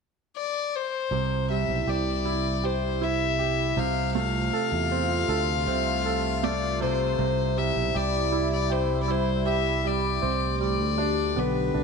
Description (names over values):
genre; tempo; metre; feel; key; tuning
pop; 79 BPM; 4/4; straight; C major; A4 = 440 Hz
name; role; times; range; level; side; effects
warm violin; melody; 0.4-11.8 s; B4 to F5; -27 LUFS; left 9 dB; none
clear concert grand piano; accompaniment; 1.1-11.8 s; C3 to A4; -30 LUFS; right 13 dB; none
sweeping resonant pad; sustained chords; 1.6-11.8 s; C3 to G4; -30 LUFS; right 1 dB; chorus, phaser
fingered electric bass; bass; 1.1-11.8 s; B1 to E2; -29 LUFS; equal; none
room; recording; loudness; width
moderate echo chamber reverb, RT60 1.4 s, small room ambience; 1960s-style stereo with parts hard left and right; -23 LUFS; side -5 dB against mid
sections
0.0-1.1 A section; 1.1-11.8 B section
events
none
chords
0.0 N.C.; 1.1 C; 3.8 F/C; 7.2 C; 10.2 Gadd9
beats
0.36 | 1.11 1.88 2.63 3.39 | 4.15 4.91 5.67 6.43 | 7.19 7.95 8.71 9.47 | 10.23 10.99 11.75